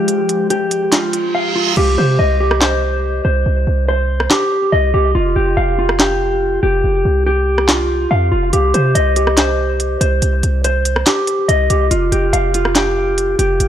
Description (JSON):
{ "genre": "hip hop, trap", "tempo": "142 BPM", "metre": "4/4", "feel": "half-time", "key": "C minor", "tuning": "A4 = 440 Hz", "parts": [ { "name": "warbly tape-like pad", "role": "sustained chords", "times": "0.0-1.7 s", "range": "F3 to G4", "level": "-23 LUFS", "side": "left 2 dB", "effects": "chorus, built-in reverb, phaser" }, { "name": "mellow electric guitar", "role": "arpeggios", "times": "0.0-13.7 s", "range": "F4 to F5", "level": "-16 LUFS", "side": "equal", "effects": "low-pass filter, tape echo" }, { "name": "trap drum kit", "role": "drums", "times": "0.1-13.7 s", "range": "crash cymbal, handclaps, hi-hat, rim click, snare drum", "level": "-17 LUFS", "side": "equal", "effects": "none" }, { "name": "reverse cymbal", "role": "sound effects", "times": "1.1-1.8 s", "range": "none", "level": "-21 LUFS", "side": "right 8 dB", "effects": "none" }, { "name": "hard-hitting 808-style bass", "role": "bass", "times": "1.8-13.7 s", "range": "F1 to C3", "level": "-16 LUFS", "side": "equal", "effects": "none" } ], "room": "light reverb", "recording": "dry, gritty hardware recording", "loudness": "-13 LUFS", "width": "side -10 dB against mid", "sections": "0.0-1.8 A section; 1.8-13.7 B section", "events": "reverse cymbal 1.1-1.8; drums muted 1.3-1.8; hi-hats muted 1.8-8.5", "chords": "0.0 Fmadd9; 1.8 Cm; 5.2 Fsus2; 8.5 Cm; 11.9 Fsus2" }